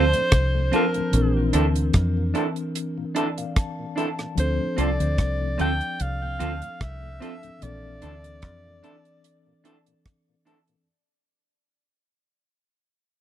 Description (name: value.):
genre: lovers rock reggae.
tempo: 74 BPM.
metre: 4/4.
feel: swing 54% on 16ths.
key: unclear.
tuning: A4 = 440 Hz.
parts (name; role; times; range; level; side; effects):
warm alto saxophone; melody; 0.0-10.1 s; Bb4 to G5; -28 LUFS; right 1 dB; tape echo.
mellow tine electric piano; accompaniment; 0.0-10.9 s; E3 to A5; -29 LUFS; left 2 dB; medium stereo tremolo.
electric guitar through a small old amp; stabs; 0.0-10.6 s; C4 to A4; -26 LUFS; right 5 dB; none.
deep dub fingered electric bass; bass; 0.0-8.8 s; Bb1 to F2; -24 LUFS; equal; none.
tonewheel organ; accompaniment; 0.1-10.8 s; D2 to D4; -35 LUFS; left 9 dB; overdrive.
deep reggae drum kit; drums; 0.1-10.8 s; hi-hat, kick drum, rim click; -24 LUFS; equal; none.
room: studio ambience.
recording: dry, close 1970s-style studio recording.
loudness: -21 LUFS.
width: side -11 dB against mid.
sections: 0.0-10.9 A section.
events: fade-out 0.0-10.9; tine electric piano fill 2.8-4.4.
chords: 0.0 Dm7; 1.1 Bbmaj9#11; 4.4 Dm7; 7.6 Bbmaj9#11.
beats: 0.32 | 1.13 1.94 2.75 3.56 | 4.37 5.18 6.00 6.81 | 7.62 8.43 9.24 10.05.